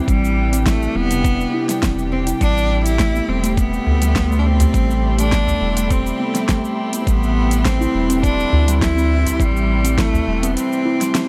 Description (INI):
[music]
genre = organic downtempo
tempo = 103 BPM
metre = 4/4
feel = straight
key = A minor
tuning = A4 = 439 Hz
[part]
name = warm chamber string section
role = sustained chords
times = 0.0-11.3 s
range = C3 to G4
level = -30 LUFS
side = equal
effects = sidechain pumping
[part]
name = steel tongue drum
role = arpeggios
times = 0.0-11.2 s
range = C3 to E4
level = -24 LUFS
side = equal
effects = digital delay
[part]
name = clear cello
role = melody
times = 0.1-11.3 s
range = G3 to E4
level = -25 LUFS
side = equal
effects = digital delay
[part]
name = round analog bass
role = bass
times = 0.1-10.6 s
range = E1 to D2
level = -21 LUFS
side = equal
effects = sidechain pumping
[part]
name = deep house drum kit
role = drums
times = 0.1-11.3 s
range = cabasa, hi-hat, snare drum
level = -26 LUFS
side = equal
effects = none
[part]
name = electronic kick drum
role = drums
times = 0.1-10.1 s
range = none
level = -22 LUFS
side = equal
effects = none
[part]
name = drifting glass-harmonics texture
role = texture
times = 4.1-11.3 s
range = A3 to C6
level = -36 LUFS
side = equal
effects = chorus, built-in reverb
[part]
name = udu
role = percussion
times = 3.9-10.2 s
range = none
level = -24 LUFS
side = equal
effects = none
[sound]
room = light reverb, small room ambience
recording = none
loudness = -17 LUFS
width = mono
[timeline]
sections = 0.0-11.3 A section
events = none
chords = 0.0 C; 2.4 Am9; 7.1 Am7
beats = | 0.08 0.66 1.25 1.83 | 2.41 2.99 3.58 4.16 | 4.74 5.32 5.91 6.49 | 7.07 7.65 8.23 8.82 | 9.40 9.98 10.56 11.15